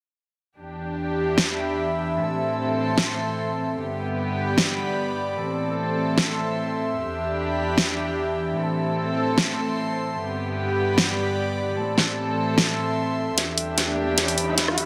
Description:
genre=heavy wobble dubstep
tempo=150 BPM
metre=4/4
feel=swing 53% on 16ths, half-time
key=E minor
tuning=A4 = 440 Hz
part: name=dark studio string section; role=sustained chords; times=0.6-14.9 s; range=E2 to A4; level=-29 LUFS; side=equal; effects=none
part: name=airy breathy pad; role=texture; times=0.6-14.9 s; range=B3 to C6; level=-30 LUFS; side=equal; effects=chorus
part: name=big-room dance drum kit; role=drums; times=1.4-14.9 s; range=hi-hat, rim click, snare drum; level=-23 LUFS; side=equal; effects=high-pass filter on snare, high-pass filter on hats
part: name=riser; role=sound effects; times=13.9-14.9 s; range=none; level=-33 LUFS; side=equal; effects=none
room=moderate plate reverb, RT60 1.7 s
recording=dense, heavily limited modern master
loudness=-24 LUFS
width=mono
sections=0.6-13.4 A section; 13.4-14.9 B section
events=build-up 13.4-14.9; drum fill 13.4-14.9; riser 13.9-14.9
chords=0.6 Em7; 2.2 Am; 3.8 G; 5.4 Am; 7.0 Em7; 8.6 Am; 10.2 G; 11.8 Am; 13.4 Em7

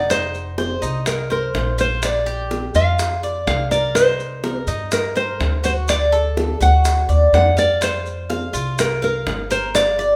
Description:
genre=latin, Cuban son and guajira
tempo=124 BPM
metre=4/4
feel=straight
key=unclear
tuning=A4 = 440 Hz
part: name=nylon-string guitar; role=melody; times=0.0-10.2 s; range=Bb4 to F#5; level=-22 LUFS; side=equal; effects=none
part: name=Cuban tres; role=arpeggios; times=0.0-10.2 s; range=Eb4 to F5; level=-26 LUFS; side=equal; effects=none
part: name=upright bass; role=bass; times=0.0-10.2 s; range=F1 to G2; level=-24 LUFS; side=equal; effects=none
part: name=bongos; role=percussion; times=0.1-10.2 s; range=none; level=-29 LUFS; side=equal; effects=none
part: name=maracas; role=percussion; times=0.1-10.2 s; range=none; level=-34 LUFS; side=equal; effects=none
room=moderate large studio reverb, RT60 1.0 s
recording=band playing live in one room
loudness=-19 LUFS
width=mono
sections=0.1-10.2 A section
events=none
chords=0.1 F7sus4; 2.0 Bb6; 4.0 Cm7; 5.9 D; 7.8 Fsus2

